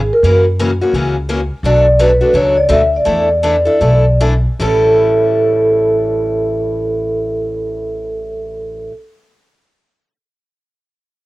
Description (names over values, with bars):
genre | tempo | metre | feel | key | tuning
acoustic string swing (jazz manouche) | 146-172 BPM | 4/4 | swing 62% on 8ths | A mixolydian | A4 = 441 Hz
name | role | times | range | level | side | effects
vibraphone with soft mallets | melody | 0.0-8.9 s | G#4 to E5 | -13 LUFS | right 1 dB | cassette tape
upright bass | bass | 0.0-8.9 s | A1 to F#2 | -17 LUFS | equal | none
picked steel-string acoustic guitar | accompaniment | 0.2-8.9 s | A2 to A4 | -19 LUFS | left 2 dB | none
room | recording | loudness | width
light reverb, small room ambience | home recording on cassette | -11 LUFS | side -18 dB against mid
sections
0.0-4.6 A section; 4.6-7.9 B section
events
slowing down 1.6-4.6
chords
0.2 F#7; 1.6 Bm9; 3.1 E7sus4; 4.6 A7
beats
| 0.23 0.58 0.93 1.28 | 1.63 1.98 2.33 2.69 | 3.05 3.42 3.81 4.20 | 4.60 5.01 5.42 5.83 | 6.25 6.66 7.07 7.48